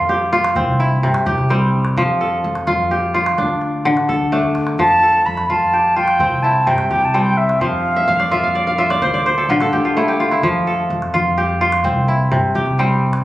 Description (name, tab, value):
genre	west african traditional, West African string and xylophone music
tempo	85 BPM (dotted quarters)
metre	12/8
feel	straight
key	F major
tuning	A4 = 440 Hz
part	kora	arpeggios	0.0-13.2 s	C3 to F5	-16 LUFS	equal	none
part	upright bass	bass	0.0-13.2 s	A1 to G2	-22 LUFS	equal	none
part	calabash	percussion	0.4-13.2 s	none	-31 LUFS	equal	none
part	concert flute	melody	4.8-9.0 s	E5 to B5	-16 LUFS	equal	none
room	wet recital hall reverb, RT60 1.7 s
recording	recorded on a phone in the room, club reverb, compression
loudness	-14 LUFS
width	side -15 dB against mid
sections	0.0-13.2 A section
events	drum fill 4.4-4.8; kora fill 8.0-10.4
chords	0.0 F; 0.6 C; 2.0 F; 3.4 D5; 4.8 F; 6.2 C; 7.6 F5; 9.0 D5; 10.4 F; 11.8 C